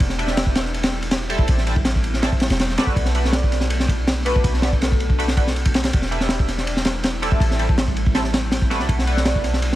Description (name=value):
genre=drum and bass, jungle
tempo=162 BPM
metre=4/4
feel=straight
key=B phrygian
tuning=A4 = 440 Hz
part: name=ethereal airy pad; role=sustained chords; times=0.0-9.8 s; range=F#3 to F#4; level=-31 LUFS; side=equal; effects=ensemble chorus, built-in reverb, vintage 12-bit sampler grit
part: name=warm 808-style bass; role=bass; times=0.0-9.8 s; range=E1 to C2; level=-23 LUFS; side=equal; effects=none
part: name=crunchy breakbeat drum kit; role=drums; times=0.0-9.8 s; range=kick drum, ride cymbal, snare drum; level=-20 LUFS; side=equal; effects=none
part: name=band-passed chord stab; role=stabs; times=0.2-9.8 s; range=G3 to E5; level=-27 LUFS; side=right 1 dB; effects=phaser, analog chorus, dub echo
part: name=marimba with soft mallets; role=melody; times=3.3-5.0, 9.3-9.5 s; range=A4 to D5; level=-30 LUFS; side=equal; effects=vintage 12-bit sampler grit, dub echo
room=small room ambience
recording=vinyl crackle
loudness=-17 LUFS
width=side -15 dB against mid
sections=0.0-9.8 A section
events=none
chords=0.0 Em7; 1.5 Am7; 3.0 Bm7; 5.9 Em7; 7.4 Am7; 8.9 Bm7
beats=| 0.00 0.37 0.74 1.11 | 1.48 1.85 2.22 2.59 | 2.96 3.33 3.70 4.07 | 4.44 4.81 5.18 5.55 | 5.92 6.29 6.67 7.04 | 7.41 7.78 8.15 8.52 | 8.89 9.26 9.63